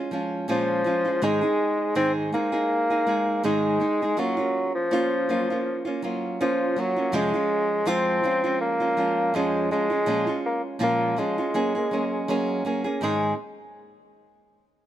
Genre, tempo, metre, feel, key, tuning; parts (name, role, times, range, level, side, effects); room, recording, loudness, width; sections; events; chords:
pop; 81 BPM; 4/4; swing 55% on 16ths; Ab mixolydian; A4 = 441 Hz
nylon-string guitar; accompaniment; 0.0-13.3 s; F2 to Ab4; -26 LUFS; right 1 dB
warm bassoon; melody; 0.5-13.4 s; F3 to C4; -24 LUFS; equal
light reverb; -22 LUFS; side -12 dB against mid
0.0-13.0 A section; 13.0-14.9 B section
0.0 Bbm7; 1.2 Ab; 4.2 Gbmaj7; 7.1 Dbmaj7/F; 10.1 Bbm7; 11.6 Gbadd9; 13.0 Ab